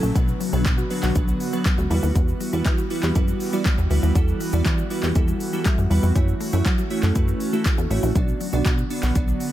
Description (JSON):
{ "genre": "dance-pop", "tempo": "120 BPM", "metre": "4/4", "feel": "straight", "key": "E dorian", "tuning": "A4 = 440 Hz", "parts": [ { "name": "glassy digital keys", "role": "accompaniment", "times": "0.0-9.5 s", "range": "F#3 to B5", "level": "-27 LUFS", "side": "right 3 dB", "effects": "chorus, sidechain pumping" }, { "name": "airy breathy pad", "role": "sustained chords", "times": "0.0-9.5 s", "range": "C#3 to F#4", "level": "-29 LUFS", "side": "equal", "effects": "chorus, sidechain pumping" }, { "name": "mallet-like synth pluck", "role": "arpeggios", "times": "0.0-9.4 s", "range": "F#3 to F#5", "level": "-32 LUFS", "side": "left 6 dB", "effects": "chorus, sidechain pumping, dub echo" }, { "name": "plucky analog bass", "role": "bass", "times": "0.0-9.3 s", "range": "A1 to F#3", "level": "-22 LUFS", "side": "equal", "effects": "sidechain pumping" }, { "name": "deep house drum kit", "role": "drums", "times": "0.0-9.5 s", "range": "handclaps, hi-hat, kick drum, shaker", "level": "-23 LUFS", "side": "equal", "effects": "none" }, { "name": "downlifter", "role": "sound effects", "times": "0.0-2.2 s", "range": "none", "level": "-46 LUFS", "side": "equal", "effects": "none" }, { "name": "group handclap", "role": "percussion", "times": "0.7-8.8 s", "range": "none", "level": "barely audible", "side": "none", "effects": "none" } ], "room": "little or no reverb", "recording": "faint mains hum", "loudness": "-19 LUFS", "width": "side -13 dB against mid", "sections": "0.0-9.5 A section", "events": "synth keys fill 5.4-6.2", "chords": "0.2 Bm; 1.9 Emadd9; 6.2 F#m7; 8.2 Bm" }